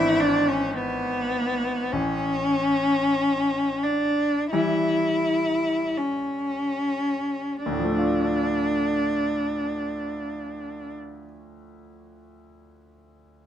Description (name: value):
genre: classical, romantic duo for cello and grand piano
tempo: 35-55 BPM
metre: 4/4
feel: rubato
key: D minor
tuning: A4 = 440 Hz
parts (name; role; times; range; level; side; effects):
- rich cello; melody; 0.0-11.0 s; B3 to E4; -23 LUFS; left 1 dB; none
- bright grand piano; accompaniment; 0.0-13.5 s; G#1 to F4; -30 LUFS; left 1 dB; none
room: light reverb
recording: close, detailed microphones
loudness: -22 LUFS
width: side -10 dB against mid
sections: 0.0-7.7 A section; 7.7-13.5 B section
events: slowing down 0.0-7.7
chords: 0.0 E7/G#; 1.9 A7; 7.7 Dm